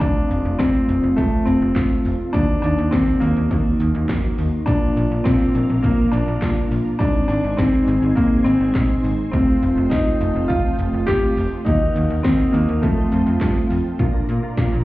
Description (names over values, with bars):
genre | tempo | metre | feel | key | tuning
synth-pop | 103 BPM | 4/4 | straight | Bb major | A4 = 440 Hz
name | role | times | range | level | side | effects
clear concert grand piano | melody | 0.0-13.7 s | A3 to G4 | -20 LUFS | left 1 dB | tape echo, shimmer reverb
mellow synth brass | accompaniment | 0.0-14.8 s | Ab3 to Gb4 | -24 LUFS | equal | chorus, shimmer reverb
slap-like FM bass | bass | 0.0-14.8 s | F1 to Bb2 | -22 LUFS | equal | none
80s electronic pad drums | drums | 0.0-14.7 s | handclaps, hi-hat, kick drum, snare drum | -22 LUFS | equal | none
ensemble organ-string | sustained chords | 4.7-14.8 s | D4 to Bb5 | -32 LUFS | right 1 dB | ensemble chorus, shimmer reverb
analog pluck | arpeggios | 14.0-14.8 s | F3 to F4 | -31 LUFS | equal | chorus, tape echo, shimmer reverb
room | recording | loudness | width
light reverb | heard muffled through a wall, club reverb, EQ, nothing above 11.0 kHz | -16 LUFS | side -17 dB against mid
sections
0.0-14.0 A section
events
none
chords
0.0 F; 2.3 Ebm; 4.7 Bb; 7.0 Ab; 9.3 Fadd9; 11.7 Ebmadd9; 12.8 Fadd9; 14.0 Bb